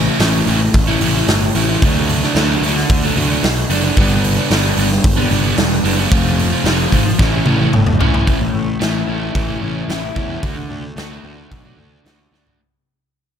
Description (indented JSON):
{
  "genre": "quiet-loud alternative rock",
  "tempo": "112 BPM",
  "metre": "4/4",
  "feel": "straight",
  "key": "A mixolydian",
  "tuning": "A4 = 440 Hz",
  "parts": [
    { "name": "raw garage guitar", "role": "riff", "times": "0.0-12.6 s", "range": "G2 to F#4", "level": "-18 LUFS", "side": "right 1 dB", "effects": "overdrive" },
    { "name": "fuzz picked electric bass", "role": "bass", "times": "0.0-12.5 s", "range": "E1 to E2", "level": "-19 LUFS", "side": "equal", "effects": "overdrive" },
    { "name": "big rock drum kit", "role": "drums", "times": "0.2-12.6 s", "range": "hi-hat, kick drum, snare drum, toms", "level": "-17 LUFS", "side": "equal", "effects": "none" },
    { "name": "electric guitar through a small old amp", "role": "arpeggios", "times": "8.3-12.6 s", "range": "A2 to F#4", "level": "-27 LUFS", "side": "left 7 dB", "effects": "lush chorus" }
  ],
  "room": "light reverb, studio ambience",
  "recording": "none",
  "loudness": "-13 LUFS",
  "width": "side -8 dB against mid",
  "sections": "0.0-8.3 A section; 8.3-12.6 B section",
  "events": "drum fill 7.2-8.3, 12.3; fade-out 8.3-12.6",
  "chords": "0.0 A; 1.8 D; 4.0 G; 6.1 F; 7.2 A; 10.4 D"
}